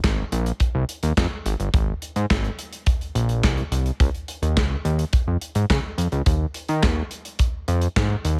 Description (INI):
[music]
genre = early-eighties boogie funk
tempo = 106 BPM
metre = 4/4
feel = straight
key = unclear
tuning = A4 = 440 Hz
[part]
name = fat analog bass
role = bass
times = 0.0-8.4 s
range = G1 to Eb3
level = -24 LUFS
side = equal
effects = none
[part]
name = modern studio drum kit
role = drums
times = 0.0-8.4 s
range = handclaps, hi-hat, kick drum, snare drum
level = -25 LUFS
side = equal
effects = gated reverb
[sound]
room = little or no reverb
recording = none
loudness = -23 LUFS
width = mono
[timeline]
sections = 0.0-8.4 A section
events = none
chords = none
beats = 0.04 0.60 1.17 | 1.74 2.30 2.87 3.43 | 4.00 4.57 5.13 5.70 | 6.26 6.83 7.40 7.96